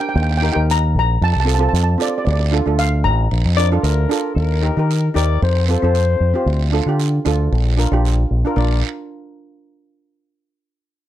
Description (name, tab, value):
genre	calypso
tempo	114 BPM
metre	4/4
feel	swing 53% on 16ths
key	Bb major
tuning	A4 = 440 Hz
part	steel pan	melody	0.0-3.8 s	D5 to Bb5	-22 LUFS	equal	none
part	steel pan	accompaniment	0.0-8.8 s	C4 to Bb4	-22 LUFS	right 3 dB	none
part	fingered electric bass with an envelope filter	bass	0.2-8.8 s	A1 to Eb3	-16 LUFS	equal	none
part	guiro	percussion	0.2-8.8 s	none	-30 LUFS	right 14 dB	none
part	growling alto saxophone	second line	3.6-8.8 s	Bb4 to D5	-22 LUFS	left 8 dB	none
room	light reverb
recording	dark, warm production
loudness	-15 LUFS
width	side -12 dB against mid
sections	0.0-4.4 A section; 4.4-8.6 B section; 8.6-10.7 C section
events	none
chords	0.2 Eb; 1.2 F; 2.3 Dm; 3.3 Bb; 4.4 Eb; 5.4 F; 6.5 Dm; 7.5 Bb